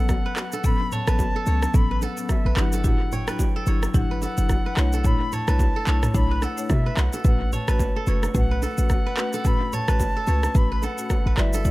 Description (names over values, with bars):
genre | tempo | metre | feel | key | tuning
afrobeats | 109 BPM | 4/4 | swing 58% on 16ths | A mixolydian | A4 = 440 Hz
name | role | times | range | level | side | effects
silver concert flute | melody | 0.0-11.7 s | E5 to B5 | -31 LUFS | left 1 dB | dub echo
marimba with soft mallets | accompaniment | 0.0-11.7 s | F#3 to D5 | -29 LUFS | left 3 dB | dub echo
kora | riff | 0.0-11.7 s | A4 to C#5 | -32 LUFS | right 3 dB | dub echo
short 808-style bass | bass | 0.0-11.7 s | F#1 to B2 | -22 LUFS | equal | none
afro-pop drum kit | drums | 0.1-11.7 s | handclaps, kick drum, rim click, shaker, toms | -24 LUFS | equal | none
bongos and congas | percussion | 0.1-11.7 s | none | -33 LUFS | right 1 dB | dub echo
room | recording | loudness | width
small room ambience | echo-heavy mix | -20 LUFS | side -19 dB against mid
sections
0.0-11.7 A section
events
none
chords
0.0 A69; 2.6 Em9/G; 4.8 Bm11; 7.2 A69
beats
0.09 | 0.64 1.19 1.74 2.29 | 2.84 3.39 3.94 4.49 | 5.04 5.59 6.15 6.70 | 7.25 7.80 8.35 8.90 | 9.45 10.00 10.55 11.10 | 11.65